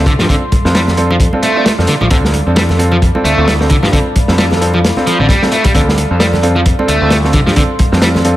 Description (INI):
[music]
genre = breakbeat, breaks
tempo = 132 BPM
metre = 4/4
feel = swing 58% on 16ths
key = unclear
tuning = A4 = 440 Hz
[part]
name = deep dark ambient pad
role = sustained chords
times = 0.0-8.4 s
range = A4 to C6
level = -21 LUFS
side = right 1 dB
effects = chorus, built-in reverb, sidechain pumping
[part]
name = clear grand piano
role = stabs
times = 0.0-8.4 s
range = C4 to A4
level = -17 LUFS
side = right 1 dB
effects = low-pass filter, digital delay
[part]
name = growling picked electric bass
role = bass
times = 0.0-8.4 s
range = A1 to G2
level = -14 LUFS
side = equal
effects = overdrive, tube saturation
[part]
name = distorted electric guitar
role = riff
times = 0.1-8.1 s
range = D3 to A3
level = -16 LUFS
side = equal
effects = distortion, digital delay
[part]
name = crunchy breakbeat drum kit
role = drums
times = 0.1-8.4 s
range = hi-hat, kick drum, snare drum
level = -13 LUFS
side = equal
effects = none
[part]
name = congas and bongos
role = percussion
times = 0.2-8.2 s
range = none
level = -24 LUFS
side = right 2 dB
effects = none
[sound]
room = light reverb, studio reverb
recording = none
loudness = -9 LUFS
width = side -14 dB against mid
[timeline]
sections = 0.0-8.4 A section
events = none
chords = 0.0 Dm7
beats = | 0.29 0.75 1.20 1.66 | 2.11 2.57 3.02 3.48 | 3.93 4.38 4.84 5.29 | 5.75 6.20 6.66 7.11 | 7.57 8.02